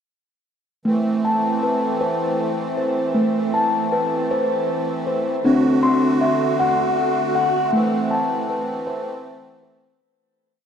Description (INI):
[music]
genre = world meditative, meditative tuned percussion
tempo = 52 BPM (dotted quarters)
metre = 6/8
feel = straight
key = A kumoi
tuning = A4 = 441 Hz
[part]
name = musette accordion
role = sustained chords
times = 0.9-10.0 s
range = D3 to F#4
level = -24 LUFS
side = right 2 dB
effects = shimmer reverb
[part]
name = steel tongue drum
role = arpeggios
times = 0.9-10.4 s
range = A3 to C6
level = -19 LUFS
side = left 1 dB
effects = tape echo, shimmer reverb
[sound]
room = wet cathedral reverb, RT60 6.3 s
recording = dark, warm production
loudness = -18 LUFS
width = side -8 dB against mid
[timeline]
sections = 0.9-10.0 A section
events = fade-out 7.7-10.0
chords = 0.9 Am; 5.4 D; 7.7 Am